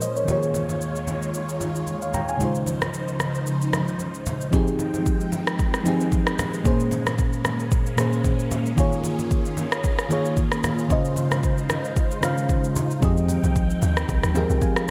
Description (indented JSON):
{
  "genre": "amapiano",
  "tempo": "113 BPM",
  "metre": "4/4",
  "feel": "swing 55% on 16ths",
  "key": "F minor",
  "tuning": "A4 = 440 Hz",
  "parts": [
    { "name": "mellow FM electric piano", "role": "accompaniment", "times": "0.0-14.9 s", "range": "Bb2 to Bb5", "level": "-27 LUFS", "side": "equal", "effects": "chorus, phaser" },
    { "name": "string machine, violas", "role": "sustained chords", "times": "0.0-14.9 s", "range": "Db2 to G5", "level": "-31 LUFS", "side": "equal", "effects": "phaser, ensemble chorus, sidechain pumping" },
    { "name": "afro-pop drum kit", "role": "drums", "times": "0.0-14.9 s", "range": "kick drum, rim click, shaker", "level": "-27 LUFS", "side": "equal", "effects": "gated reverb" },
    { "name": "congas", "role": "percussion", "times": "0.3-14.8 s", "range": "none", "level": "-35 LUFS", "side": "equal", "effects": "none" },
    { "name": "deep log drum bass", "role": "bass", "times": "13.0-14.6 s", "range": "C2 to F2", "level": "-25 LUFS", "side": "equal", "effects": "none" }
  ],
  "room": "moderate lush hall reverb, RT60 2.5 s",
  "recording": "bright 1980s-style digital production",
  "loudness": "-23 LUFS",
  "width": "mono",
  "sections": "0.0-4.5 A section; 4.5-14.9 B section",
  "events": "none",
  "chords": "0.3 Eb9sus4; 2.4 Dbmaj7; 4.5 Fm9; 6.7 Bbm7; 8.8 Eb9sus4; 10.9 Dbmaj7; 13.0 Fm9"
}